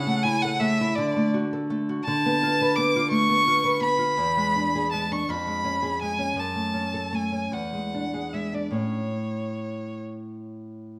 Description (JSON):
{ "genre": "romantic duo for violin and classical guitar", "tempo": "45-56 BPM (dotted quarters)", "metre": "6/8", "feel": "rubato", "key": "A major", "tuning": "A4 = 440 Hz", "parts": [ { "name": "clear violin", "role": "melody", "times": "0.0-10.0 s", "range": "C#5 to D6", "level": "-28 LUFS", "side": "equal", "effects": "none" }, { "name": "nylon-string guitar", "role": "accompaniment", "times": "0.0-11.0 s", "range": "E2 to B4", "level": "-28 LUFS", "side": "equal", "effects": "none" } ], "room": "moderate recital hall reverb, RT60 1.5 s", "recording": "none", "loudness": "-25 LUFS", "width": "mono", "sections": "0.0-11.0 A section", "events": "none", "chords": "0.0 A/C#; 0.9 D; 2.0 Bm7b5/D; 4.2 E7; 5.3 C#7/E#; 6.4 F#m; 7.5 E7; 8.7 A" }